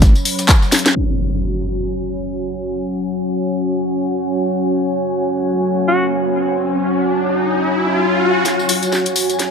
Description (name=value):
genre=bass house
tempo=128 BPM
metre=4/4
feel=swing 58% on 16ths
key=unclear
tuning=A4 = 440 Hz
part: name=deep dark ambient pad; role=sustained chords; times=0.0-9.5 s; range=F#3 to B5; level=-20 LUFS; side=left 2 dB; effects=chorus, built-in reverb, sidechain pumping
part: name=breakbeat sampler-style drum kit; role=drums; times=0.0-1.0 s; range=hi-hat, snare drum, tambourine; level=-28 LUFS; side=equal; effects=none
part: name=electronic kick drum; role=drums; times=0.0-0.6 s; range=none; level=-11 LUFS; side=equal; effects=overdrive
part: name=house drum kit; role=drums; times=0.0-0.9, 8.5-9.5 s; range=handclaps, hi-hat, snare drum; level=-18 LUFS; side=left 1 dB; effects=overdrive, high-pass filter on hats, low-pass filter on hats, high-pass filter on snare, low-pass filter on snare
part: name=tambourine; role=percussion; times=0.0-0.9, 8.5-9.5 s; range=none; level=-24 LUFS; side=left 3 dB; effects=none
part: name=impact and riser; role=sound effects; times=1.0-8.5 s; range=none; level=-21 LUFS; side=equal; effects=none
part: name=airy breathy pad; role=texture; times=1.0-9.5 s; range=F#4 to G#5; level=-21 LUFS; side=right 2 dB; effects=chorus, sidechain pumping
part: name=bright alto saxophone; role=melody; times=5.9-6.1 s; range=F#4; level=-20 LUFS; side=right 1 dB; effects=dub echo
room=moderate lush hall reverb, RT60 1.8 s, digital ambience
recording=low-pass filter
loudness=-15 LUFS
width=side -6 dB against mid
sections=1.0-8.5 A section; 8.5-9.5 B section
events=drum fill 0.7, 8.5-9.5; band accent 0.8; impact 1.0-2.8; filter sweep on drum 1.0-8.5; filter sweep 1.0-8.5; riser 5.8-8.5; build-up 8.5-9.5; filter sweep on ambient pad 8.5-9.5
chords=0.0 F#5